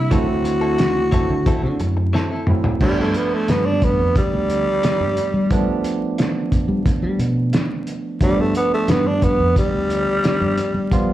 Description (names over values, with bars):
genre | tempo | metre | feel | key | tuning
straight-eighth soul blues | 89 BPM | 4/4 | straight | G mixolydian | A4 = 439 Hz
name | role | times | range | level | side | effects
growling tenor saxophone | melody | 0.0-11.1 s | G3 to F#4 | -20 LUFS | equal | slapback echo
barky tine electric piano | accompaniment | 0.0-11.1 s | F3 to F4 | -24 LUFS | right 4 dB | none
fingered electric bass | bass | 0.0-11.1 s | D2 to G3 | -21 LUFS | left 1 dB | none
direct-recorded clean electric guitar | stabs | 0.1-2.7 s | F#3 to A4 | -28 LUFS | left 4 dB | harmonic tremolo, slapback echo
cloth-damped thuddy drum kit | drums | 0.1-11.1 s | crash cymbal, hi-hat, kick drum, snare drum, toms | -20 LUFS | equal | none
room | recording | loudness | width
light reverb | live gig heard through the venue's PA, club reverb, vinyl crackle | -16 LUFS | side -14 dB against mid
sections
0.0-2.8 A section; 2.8-11.1 B section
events
drum fill 2.1-2.8; tenor saxophone solo 2.8-11.1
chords
0.1 D9; 2.8 G9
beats
| 0.12 0.79 1.47 2.14 | 2.82 3.49 4.16 4.84 | 5.51 6.19 6.86 7.54 | 8.21 8.89 9.56 10.24 | 10.92